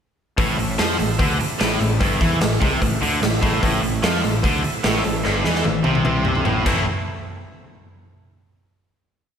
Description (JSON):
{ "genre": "classic rock", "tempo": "148 BPM", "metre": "4/4", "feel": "straight", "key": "A minor", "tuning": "A4 = 440 Hz", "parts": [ { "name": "bright tonewheel organ", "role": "sustained chords", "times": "0.4-6.9 s", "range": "C4 to E5", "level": "-32 LUFS", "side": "equal", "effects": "none" }, { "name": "cranked stack guitar", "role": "riff", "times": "0.4-6.8 s", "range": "G2 to E4", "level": "-24 LUFS", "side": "left 7 dB", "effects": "overdrive, slapback echo" }, { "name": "tight distorted guitar", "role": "riff", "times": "0.4-6.8 s", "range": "G2 to E4", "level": "-24 LUFS", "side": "right 7 dB", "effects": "distortion, slapback echo" }, { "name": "fuzz fingered electric bass", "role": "bass", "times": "0.4-6.9 s", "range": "G1 to F2", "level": "-25 LUFS", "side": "equal", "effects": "overdrive" }, { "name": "big rock drum kit", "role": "drums", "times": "0.4-6.8 s", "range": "crash cymbal, hi-hat, kick drum, snare drum, toms", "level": "-21 LUFS", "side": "equal", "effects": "none" }, { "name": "cowbell", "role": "percussion", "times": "0.4-6.9 s", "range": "none", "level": "-35 LUFS", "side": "left 6 dB", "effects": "none" } ], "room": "moderate lush hall reverb, RT60 1.9 s, studio reverb", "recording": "big arena sound", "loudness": "-17 LUFS", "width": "side -8 dB against mid", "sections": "0.4-6.9 riff; 6.9-8.5 final hit", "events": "drum fill 5.2-6.9", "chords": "0.4 Am; 6.9 N.C.", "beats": "| 0.38 0.79 1.19 1.60 | 2.01 2.41 2.82 3.22 | 3.63 4.03 4.44 4.84 | 5.25 5.65 6.06 6.46 | 6.87" }